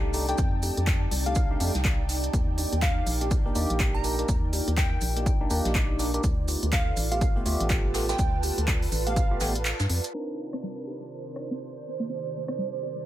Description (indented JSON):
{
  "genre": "deep house",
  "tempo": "123 BPM",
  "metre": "4/4",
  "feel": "swing 60% on 16ths",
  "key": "C dorian",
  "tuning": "A4 = 440 Hz",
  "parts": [
    { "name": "hollow soft pad", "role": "sustained chords", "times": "0.0-13.1 s", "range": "C3 to A5", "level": "-41 LUFS", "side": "equal", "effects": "chorus, sidechain pumping" },
    { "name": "bright tine electric piano", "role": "stabs", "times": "0.0-13.1 s", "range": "A3 to Bb4", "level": "-33 LUFS", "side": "equal", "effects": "phaser, sidechain pumping, low-pass filter, digital delay" },
    { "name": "organ-like FM bass", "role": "bass", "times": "0.0-10.0 s", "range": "A1 to G2", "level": "-28 LUFS", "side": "equal", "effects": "sidechain pumping" },
    { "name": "ethereal airy pad", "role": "texture", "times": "0.0-13.1 s", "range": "Eb3 to A5", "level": "-36 LUFS", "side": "right 3 dB", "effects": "ensemble chorus, built-in reverb, sidechain pumping" },
    { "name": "deep house drum kit", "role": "drums", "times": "0.1-12.6 s", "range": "handclaps, hi-hat, rim click", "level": "-32 LUFS", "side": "equal", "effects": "small room ambience" },
    { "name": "soft brush drum kit", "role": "drums", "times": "0.1-10.1 s", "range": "hi-hat, shaker, snare drum", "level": "-38 LUFS", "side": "right 2 dB", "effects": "sidechain pumping on hats, high-pass filter on hats, small room ambience, high-pass filter on snare, sidechain pumping on perc, high-pass filter on perc, high-pass filter on room" },
    { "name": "glassy wavetable pluck", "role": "melody", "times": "0.3-9.7 s", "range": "F5 to Bb5", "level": "-35 LUFS", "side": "equal", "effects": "chorus, ping-pong delay" },
    { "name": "electronic kick drum", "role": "drums", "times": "0.4-9.3 s", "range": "none", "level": "-26 LUFS", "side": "equal", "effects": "small room ambience" },
    { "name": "soft round pluck", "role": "arpeggios", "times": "10.1-12.9 s", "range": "G3 to G4", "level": "-35 LUFS", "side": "equal", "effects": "wide subtle chorus, sidechain pumping, ping-pong delay" }
  ],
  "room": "digital ambience",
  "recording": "low-pass filter",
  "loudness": "-24 LUFS",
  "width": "side -13 dB against mid",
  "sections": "0.0-10.1 A section; 10.1-13.1 B section",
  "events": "kick drops out 9.7-10.1; band accent 9.7; filter sweep on tine electric piano 10.1-13.1; filter sweep on synth arpeggio sound 10.1-13.1; filter sweep 10.1-13.1",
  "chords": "0.0 F13; 2.3 Ebmaj7; 6.2 G9; 10.1 Cm9"
}